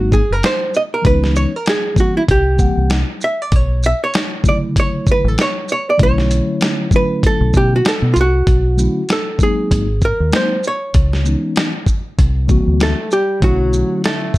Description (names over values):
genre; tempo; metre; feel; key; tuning
hip hop, jazz-hop; 97 BPM; 4/4; swing 57% on 16ths; B minor; A4 = 439 Hz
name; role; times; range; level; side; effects
archtop guitar, miked and amplified; melody; 0.0-14.4 s; E4 to E5; -18 LUFS; right 1 dB; none
mellow tine electric piano; accompaniment; 0.0-14.3 s; C#3 to F#5; -20 LUFS; left 2 dB; slow stereo tremolo
deep dub fingered electric bass; bass; 0.0-13.8 s; F#1 to B2; -16 LUFS; equal; none
dusty soul sampler-style drum kit; drums; 0.1-14.4 s; hi-hat, kick drum, shaker, snare drum; -16 LUFS; equal; none
breathy tenor saxophone; second line; 12.8-14.4 s; F#3 to A3; -24 LUFS; left 4 dB; analog delay
room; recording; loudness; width
light reverb; dark, warm production; -13 LUFS; side -18 dB against mid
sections
0.0-8.5 A section; 8.5-14.4 B section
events
hollow-body jazz guitar solo 0.0-8.5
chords
0.0 G#7; 1.1 C#m7; 2.3 C7#11; 3.5 Bm11; 9.7 G#7; 11.0 C#m7; 12.2 C7#11; 13.4 Bm11